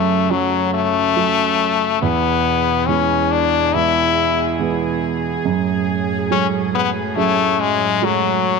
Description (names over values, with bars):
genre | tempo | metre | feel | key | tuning
pop | 70 BPM | 4/4 | straight | F# minor | A4 = 440 Hz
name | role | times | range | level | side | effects
stopped French horn | melody | 0.0-8.6 s | F#3 to E4 | -17 LUFS | left 10 dB | slapback echo
warm concert grand piano | accompaniment | 0.0-8.6 s | E2 to G#4 | -21 LUFS | right 10 dB | none
warm studio string section | sustained chords | 0.0-8.6 s | E2 to G#4 | -24 LUFS | right 1 dB | none
room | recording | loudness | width
moderate plate reverb, RT60 3.4 s | 1960s-style stereo with parts hard left and right | -15 LUFS | side -4 dB against mid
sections
0.0-8.6 A section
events
none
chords
0.0 F#m; 2.0 E; 5.5 F#madd9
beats
0.31 1.17 | 2.02 2.88 3.74 4.59 | 5.45 6.31 7.17 8.02